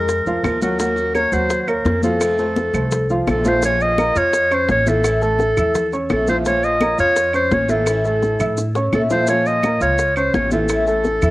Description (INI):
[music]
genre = latin, Cuban son and guajira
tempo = 170 BPM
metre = 4/4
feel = straight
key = unclear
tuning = A4 = 436 Hz
[part]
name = clear clarinet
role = melody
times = 0.0-11.3 s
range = A4 to Eb5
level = -18 LUFS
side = equal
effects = cassette tape
[part]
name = picked old ladder-braced acoustic guitar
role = accompaniment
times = 0.0-11.3 s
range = C3 to Gb4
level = -27 LUFS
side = left 2 dB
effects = cassette tape, plate reverb
[part]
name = dark grand piano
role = arpeggios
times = 0.0-11.3 s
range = E3 to F6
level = -23 LUFS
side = right 1 dB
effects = cassette tape
[part]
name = upright bass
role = bass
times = 0.0-11.3 s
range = A1 to Bb2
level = -24 LUFS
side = equal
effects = none
[part]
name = bongos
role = percussion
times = 0.1-11.2 s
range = none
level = -26 LUFS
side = left 4 dB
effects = none
[part]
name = congas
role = percussion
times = 0.1-11.3 s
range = none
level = -26 LUFS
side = left 2 dB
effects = none
[part]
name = maracas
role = percussion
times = 0.1-11.3 s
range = none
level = -34 LUFS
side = right 2 dB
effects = none
[part]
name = claves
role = percussion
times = 0.4-11.3 s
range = none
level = -30 LUFS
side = right 4 dB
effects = none
[sound]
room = moderate small room reverb, RT60 0.6 s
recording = home recording on cassette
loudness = -15 LUFS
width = side -18 dB against mid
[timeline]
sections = 0.0-3.6 A section; 3.6-11.3 B section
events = drum fill 8.6-9.3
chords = 0.0 Bb7; 0.8 Ebm7; 2.2 F7; 3.6 A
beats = 0.09 0.45 | 0.80 1.15 1.51 1.86 | 2.21 2.57 2.92 3.27 | 3.63 3.98 4.33 4.69 | 5.04 5.39 5.75 6.10 | 6.45 6.81 7.16 7.51 | 7.87 8.22 8.57 8.93 | 9.28 9.64 9.99 10.34 | 10.70 11.05